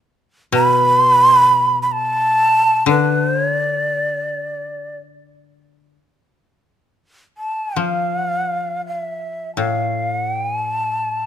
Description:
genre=japanese traditional, Japanese chamber music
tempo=free time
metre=none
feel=none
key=D kumoi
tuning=A4 = 440 Hz
part: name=breathy bright shakuhachi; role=melody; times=0.5-11.3 s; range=D5 to B5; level=-16 LUFS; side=right 1 dB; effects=none
part: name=koto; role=accompaniment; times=0.5-11.3 s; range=A2 to F3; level=-22 LUFS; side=left 5 dB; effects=none
room=light reverb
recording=close, detailed microphones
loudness=-15 LUFS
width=side -9 dB against mid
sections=0.0-6.4 A section; 6.4-11.3 A section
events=none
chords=none

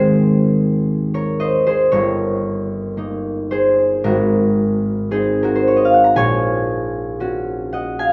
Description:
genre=classical, solo harp piece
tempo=57 BPM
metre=4/4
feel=rubato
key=unclear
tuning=A4 = 438 Hz
part: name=concert harp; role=solo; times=0.0-8.1 s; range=G1 to Bb5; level=-17 LUFS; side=equal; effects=none
room=moderate scoring stage reverb, RT60 1.7 s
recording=close, detailed microphones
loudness=-18 LUFS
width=mono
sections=0.0-8.1 A section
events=none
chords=0.0 Ab; 1.9 Eb7/G; 4.0 Ab; 6.2 Gb/Bb

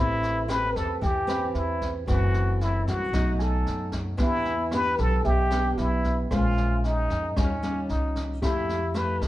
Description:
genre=bossa nova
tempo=114 BPM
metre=4/4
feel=straight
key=A minor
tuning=A4 = 441 Hz
part: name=trumpet with plunger mute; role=melody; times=0.0-9.3 s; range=C#4 to B4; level=-28 LUFS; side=left 1 dB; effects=none
part: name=nylon-string guitar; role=accompaniment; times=0.0-9.3 s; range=F#2 to B4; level=-30 LUFS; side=right 1 dB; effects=none
part: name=upright bass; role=bass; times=0.0-9.3 s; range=F#1 to F#2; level=-27 LUFS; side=equal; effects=none
part: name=jazz brush drum kit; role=drums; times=0.2-9.3 s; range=kick drum, rim click, snare drum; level=-31 LUFS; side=equal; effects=none
part: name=warm grand piano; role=accompaniment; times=0.5-9.3 s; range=G4 to D6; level=-38 LUFS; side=right 1 dB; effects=none
room=moderate stone room reverb, RT60 0.9 s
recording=band playing live in one room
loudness=-23 LUFS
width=side -15 dB against mid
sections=0.0-9.3 A section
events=none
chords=0.0 Am9; 2.1 F#m7b5; 3.1 B7; 4.2 Em7; 6.3 Bbm7; 7.4 D#9; 8.4 Fmaj9

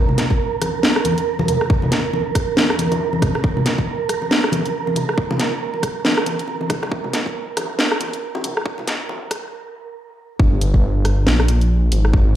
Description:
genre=deep dubstep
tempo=138 BPM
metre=4/4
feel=swing 59% on 16ths, half-time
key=G phrygian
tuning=A4 = 440 Hz
part: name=wind-like tuned noise texture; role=texture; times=0.0-9.5 s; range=Bb4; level=-25 LUFS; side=right 8 dB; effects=built-in reverb
part: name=congas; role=percussion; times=0.1-9.2 s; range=none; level=-24 LUFS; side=left 2 dB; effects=dub echo
part: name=garage drum kit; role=drums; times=0.2-12.1 s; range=hi-hat, rim click, snare drum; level=-20 LUFS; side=equal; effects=none
part: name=electronic kick drum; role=drums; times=0.3-12.2 s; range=none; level=-17 LUFS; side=equal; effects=none
part: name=dark detuned saw bass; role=bass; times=10.4-12.4 s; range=G1 to Bb1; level=-15 LUFS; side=equal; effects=none
room=moderate spring reverb, RT60 1.1 s, digital ambience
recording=played on a big sound system in a bare room, large studio reverb, high-pass filter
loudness=-17 LUFS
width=side -11 dB against mid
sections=0.0-10.4 A section; 10.4-12.4 B section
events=build-up 0.0-10.4; filter sweep 0.0-10.4; stop 9.5-10.4; drop 10.4-12.4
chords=0.0 N.C.; 10.4 Gm

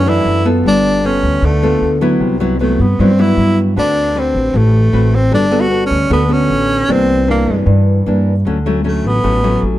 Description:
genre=bossa nova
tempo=154 BPM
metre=4/4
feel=straight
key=D major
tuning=A4 = 440 Hz
part: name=breathy tenor saxophone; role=melody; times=0.0-9.6 s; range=A3 to F#4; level=-16 LUFS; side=equal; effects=none
part: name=nylon-string guitar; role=accompaniment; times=0.0-9.8 s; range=F#2 to B4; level=-16 LUFS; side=left 1 dB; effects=none
part: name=upright bass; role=bass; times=0.0-9.8 s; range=G1 to G2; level=-15 LUFS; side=equal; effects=none
room=little or no reverb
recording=dark, warm production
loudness=-11 LUFS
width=side -14 dB against mid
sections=0.0-9.8 A section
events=none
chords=0.0 Bm7; 0.7 G9; 2.2 Cmaj7#11; 3.8 D6; 5.3 Gmaj9; 6.9 C9; 8.5 Dmaj7

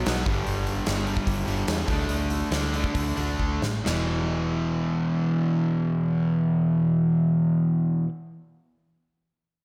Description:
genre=hard rock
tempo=128-150 BPM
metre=4/4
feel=straight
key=unclear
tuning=A4 = 437 Hz
part: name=cranked stack guitar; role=riff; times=0.0-8.1 s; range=E2 to D4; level=-31 LUFS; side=equal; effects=overdrive
part: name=overdriven semi-hollow guitar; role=riff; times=0.0-8.1 s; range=E2 to D4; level=-28 LUFS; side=equal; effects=none
part: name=vintage muted fingered electric bass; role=bass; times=0.0-8.0 s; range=E1 to A2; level=-32 LUFS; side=equal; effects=none
part: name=huge arena drum kit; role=drums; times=0.1-4.0 s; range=hi-hat, kick drum, snare drum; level=-32 LUFS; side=equal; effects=none
room=wet lush hall reverb, RT60 1.5 s, small room ambience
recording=none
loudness=-25 LUFS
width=mono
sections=0.0-3.9 A section; 3.9-7.6 B section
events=slowing down 0.5-3.9; drum fill 3.4-3.9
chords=0.3 G5; 1.9 D5; 3.9 E5

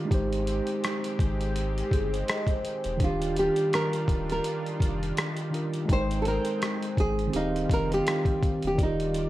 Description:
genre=lo-fi hip hop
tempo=83 BPM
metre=4/4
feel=swing 57% on 16ths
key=Eb major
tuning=A4 = 441 Hz
part: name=tine electric piano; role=accompaniment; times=0.0-9.3 s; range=Eb3 to G5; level=-30 LUFS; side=right 1 dB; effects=medium stereo tremolo, cassette tape
part: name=lush unison pad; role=sustained chords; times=0.0-9.3 s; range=Eb3 to G5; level=-38 LUFS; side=left 1 dB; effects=chorus
part: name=warm sub bass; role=bass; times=0.1-9.3 s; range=D1 to Ab1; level=-32 LUFS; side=equal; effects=none
part: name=boom bap sampler-style drum kit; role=drums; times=0.1-9.3 s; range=hi-hat, kick drum, rim click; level=-29 LUFS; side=equal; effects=none
part: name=vibraphone with soft mallets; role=second line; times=1.8-3.0 s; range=G4 to Eb5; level=-33 LUFS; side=equal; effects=analog delay
part: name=nylon-string guitar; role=melody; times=3.0-9.3 s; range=Eb4 to C5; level=-28 LUFS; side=right 1 dB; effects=none
room=light reverb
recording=cassette tape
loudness=-25 LUFS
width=side -15 dB against mid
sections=0.0-8.8 A section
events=none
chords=0.1 Abmaj7; 3.0 Ebmaj9; 5.9 Abmaj7; 7.3 Eb69; 8.8 Ebmaj9

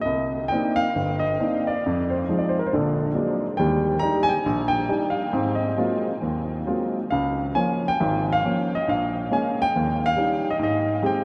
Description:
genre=solo jazz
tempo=137 BPM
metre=4/4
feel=swing 67% on 8ths, rubato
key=C minor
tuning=A4 = 444 Hz
part: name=warm baby grand piano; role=solo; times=0.0-11.2 s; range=G1 to Bb5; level=-23 LUFS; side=equal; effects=none
room=wet huge ambient reverb, RT60 8.3 s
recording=dreamy mix soaked in reverb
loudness=-23 LUFS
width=mono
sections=0.1-11.2 A section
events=none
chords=0.1 Cm9; 1.8 Fm7; 2.7 Bbaug7; 3.6 Ebmaj7; 5.3 Ab13; 7.1 Db6; 8.9 Bbm7; 9.8 Eb7; 10.6 Abmaj7

